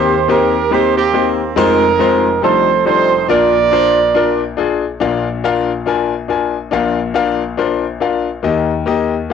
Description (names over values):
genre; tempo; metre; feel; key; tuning
gospel; 140 BPM; 4/4; swing 59% on 8ths; unclear; A4 = 444 Hz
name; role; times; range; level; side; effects
warm horn section; melody; 0.0-4.5 s; Bb3 to D5; -13 LUFS; right 8 dB; cassette tape
clear concert grand piano; accompaniment; 0.0-9.3 s; F1 to Ab5; -15 LUFS; left 7 dB; cassette tape
room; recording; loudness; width
light reverb, small room ambience; home recording on cassette; -12 LUFS; side -7 dB against mid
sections
0.0-5.0 A section; 5.0-8.4 B section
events
none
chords
0.0 Cm7/Eb; 1.6 Fm7; 2.4 F13; 3.3 Bb; 8.4 Eb